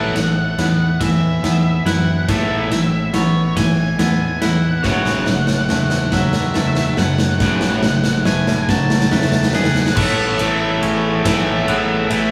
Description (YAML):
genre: post-rock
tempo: 47 BPM (dotted quarters)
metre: 6/8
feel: straight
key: A major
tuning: A4 = 440 Hz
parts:
  - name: octave-fuzz lead guitar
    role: melody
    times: 0.0-12.3 s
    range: C#5 to A5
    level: -27 LUFS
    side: equal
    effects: distortion
  - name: pedal steel guitar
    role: sustained chords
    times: 0.0-12.3 s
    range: A3 to C#5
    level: -34 LUFS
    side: equal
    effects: none
  - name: glockenspiel with rubber mallets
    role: arpeggios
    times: 0.0-12.3 s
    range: E6 to G#6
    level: -35 LUFS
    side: equal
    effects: none
  - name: twangy electric guitar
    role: arpeggios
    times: 0.0-12.3 s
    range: A2 to G#4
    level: -28 LUFS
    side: equal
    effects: none
  - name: distorted electric guitar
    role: riff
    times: 0.0-12.3 s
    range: F#2 to A3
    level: -21 LUFS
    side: equal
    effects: distortion
  - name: fingered electric bass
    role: bass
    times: 0.0-12.3 s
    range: A1 to F#2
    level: -27 LUFS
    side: equal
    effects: none
  - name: big rock drum kit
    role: drums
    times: 0.2-12.3 s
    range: crash cymbal, kick drum, ride cymbal, snare drum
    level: -22 LUFS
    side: equal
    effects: none
room: moderate large studio reverb, RT60 0.9 s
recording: band playing live in one room, small room ambience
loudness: -17 LUFS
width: mono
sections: 0.0-10.0 A section; 10.0-12.3 B section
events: build-up 0.0-10.0; drum fill 0.0-10.0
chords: 0.0 Aadd9; 4.8 F#madd9/A; 10.0 Aadd9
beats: 1.01 | 2.29 3.57 | 4.85 6.13 | 7.41 8.69 | 9.97 11.25